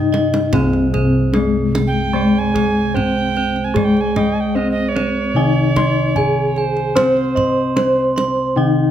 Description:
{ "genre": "Javanese gamelan", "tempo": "75 BPM", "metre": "4/4", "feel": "straight", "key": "C pelog", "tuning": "A4 = 440 Hz", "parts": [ { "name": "gamelan-type bronze metallophone", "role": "melody", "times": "0.0-8.9 s", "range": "Ab3 to C5", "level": "-19 LUFS", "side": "left 3 dB", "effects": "none" }, { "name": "gamelan-type bronze metallophone", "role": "accompaniment", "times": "0.0-8.9 s", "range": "C3 to C4", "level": "-21 LUFS", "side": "right 2 dB", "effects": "none" }, { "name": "gamelan-type bossed gongs", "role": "arpeggios", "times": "0.0-8.9 s", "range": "Ab4 to C6", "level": "-26 LUFS", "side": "left 5 dB", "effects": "none" }, { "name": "gamelan-type bronze metallophone", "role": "arpeggios", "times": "0.0-8.9 s", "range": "Ab4 to C6", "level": "-25 LUFS", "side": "right 4 dB", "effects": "none" }, { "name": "gamelan-type bossed gongs", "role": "bass", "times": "0.0-8.9 s", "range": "C2 to C5", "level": "-21 LUFS", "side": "equal", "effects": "none" }, { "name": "kendang", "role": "percussion", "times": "0.1-8.4 s", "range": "none", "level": "-24 LUFS", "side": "right 3 dB", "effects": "none" }, { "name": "breathy bright soprano recorder", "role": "second line", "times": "1.9-8.0 s", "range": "C5 to Ab5+20c", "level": "-23 LUFS", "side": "right 5 dB", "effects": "none" } ], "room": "light reverb", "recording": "close, detailed microphones", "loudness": "-14 LUFS", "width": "side -10 dB against mid", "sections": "0.5-8.9 A section", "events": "drum fill 0.0-0.5", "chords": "none" }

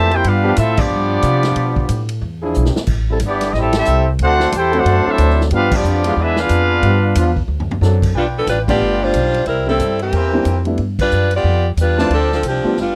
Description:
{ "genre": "jazz, big band swing", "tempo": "182 BPM", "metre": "4/4", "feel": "swing 62% on 8ths", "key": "G major, G mixolydian from 8.2 s", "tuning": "A4 = 440 Hz", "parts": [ { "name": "clear trumpet section", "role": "melody", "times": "0.0-7.4 s", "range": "B3 to A5", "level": "-20 LUFS", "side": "equal", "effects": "none" }, { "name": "clear trombone section", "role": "second line", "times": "0.0-7.4 s", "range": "Bb2 to G4", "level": "-23 LUFS", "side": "equal", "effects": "none" }, { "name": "upright bass", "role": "bass", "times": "0.0-13.0 s", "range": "G1 to C3", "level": "-20 LUFS", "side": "equal", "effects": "none" }, { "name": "swinging big-band drum kit", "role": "drums", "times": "0.1-12.9 s", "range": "crash cymbal, hi-hat, kick drum, ride cymbal, snare drum, toms", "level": "-26 LUFS", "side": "equal", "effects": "none" }, { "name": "mellow trombone section", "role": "sustained chords", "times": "0.4-8.2 s", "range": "E3 to A4", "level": "-23 LUFS", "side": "equal", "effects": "none" }, { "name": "clear trumpet section", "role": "stabs", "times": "8.1-12.4 s", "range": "E4 to A5", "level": "-27 LUFS", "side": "equal", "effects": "none" }, { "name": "clear saxophone section", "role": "melody", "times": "8.2-13.0 s", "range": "E3 to D5", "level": "-19 LUFS", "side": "equal", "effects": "none" }, { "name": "warm concert grand piano", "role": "accompaniment", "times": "8.7-12.8 s", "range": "F3 to F4", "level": "-22 LUFS", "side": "equal", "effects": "none" } ], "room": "little or no reverb", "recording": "dry, close 1970s-style studio recording", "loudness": "-16 LUFS", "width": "mono", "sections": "0.0-8.2 A section; 8.2-13.0 B section", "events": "band accent 0.8, 3.7, 5.7, 8.6, 11.0; drum fill 2.6-2.9, 7.5-7.8, 12.8", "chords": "0.3 G7; 1.6 Bm7b5; 2.2 E7b9; 2.9 Am7; 4.2 D7; 5.5 G7; 6.2 E7b9; 6.8 G7; 7.5 D7; 8.2 G7; 9.5 C7; 10.8 G7; 12.1 Dm7" }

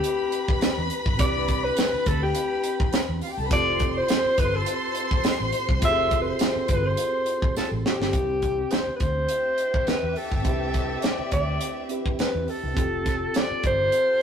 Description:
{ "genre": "lush 1970s-style soul", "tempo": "104 BPM", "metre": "4/4", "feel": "swing 54% on 16ths", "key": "C major", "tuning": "A4 = 440 Hz", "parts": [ { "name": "breathy alto saxophone", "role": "melody", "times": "0.0-14.2 s", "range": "G4 to E5", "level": "-25 LUFS", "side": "left 1 dB", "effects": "none" }, { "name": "warm studio violin section", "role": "second line", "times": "0.0-14.2 s", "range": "C4 to C6", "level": "-31 LUFS", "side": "left 2 dB", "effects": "none" }, { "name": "tine electric piano", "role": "accompaniment", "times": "0.0-14.2 s", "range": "C4 to C5", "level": "-32 LUFS", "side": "right 1 dB", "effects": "medium stereo tremolo" }, { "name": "tight funk drum kit", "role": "drums", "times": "0.0-14.1 s", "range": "hi-hat, kick drum, snare drum", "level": "-26 LUFS", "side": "equal", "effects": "none" }, { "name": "vintage muted fingered electric bass", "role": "bass", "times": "0.6-13.9 s", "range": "F1 to E2", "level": "-31 LUFS", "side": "equal", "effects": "none" }, { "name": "tambourine", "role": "percussion", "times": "0.6-7.7 s", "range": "none", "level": "-46 LUFS", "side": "right 6 dB", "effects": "none" } ], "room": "moderate stone room reverb, RT60 1.3 s", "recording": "rough rehearsal-room recording, warm saturation", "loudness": "-22 LUFS", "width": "side -8 dB against mid", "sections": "0.0-8.1 A section; 8.1-14.2 B section", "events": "drum fill 7.6-8.1", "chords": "0.0 Cmaj9; 3.5 Fmaj7; 8.1 Cmaj9; 12.8 F" }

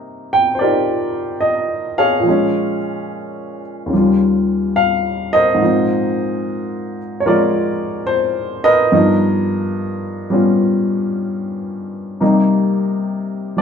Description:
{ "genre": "solo jazz", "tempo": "73 BPM", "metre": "4/4", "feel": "swing 69% on 8ths, rubato", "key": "unclear", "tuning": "A4 = 440 Hz", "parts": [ { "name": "warm upright piano", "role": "solo", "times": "0.0-13.6 s", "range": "Eb2 to G5", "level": "-15 LUFS", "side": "equal", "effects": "none" } ], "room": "wet stone room reverb, RT60 1.1 s", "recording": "band playing live in one room", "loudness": "-14 LUFS", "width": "side -7 dB against mid", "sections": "0.0-5.6 A section; 5.6-13.6 B section", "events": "none", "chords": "0.0 Cm9; 2.3 Bbm7; 3.9 Eb9; 5.6 Ab69; 8.9 G7alt; 12.2 Cm7" }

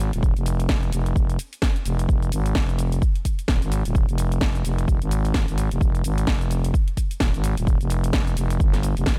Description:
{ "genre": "bass house", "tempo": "129 BPM", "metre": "4/4", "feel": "swing 59% on 16ths", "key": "F minor", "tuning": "A4 = 440 Hz", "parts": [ { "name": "growling FM bass", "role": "bass", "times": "0.0-9.2 s", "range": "Eb1 to Ab1", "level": "-25 LUFS", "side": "equal", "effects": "overdrive, sidechain pumping" }, { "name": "house drum kit", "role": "drums", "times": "0.0-9.2 s", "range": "hi-hat, shaker, snare drum", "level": "-32 LUFS", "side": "equal", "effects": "none" }, { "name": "electronic kick drum", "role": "drums", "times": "0.2-9.2 s", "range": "none", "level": "-24 LUFS", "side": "equal", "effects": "none" } ], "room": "digital ambience", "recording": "none", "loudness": "-22 LUFS", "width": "mono", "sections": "0.0-9.2 A section", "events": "none", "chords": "none" }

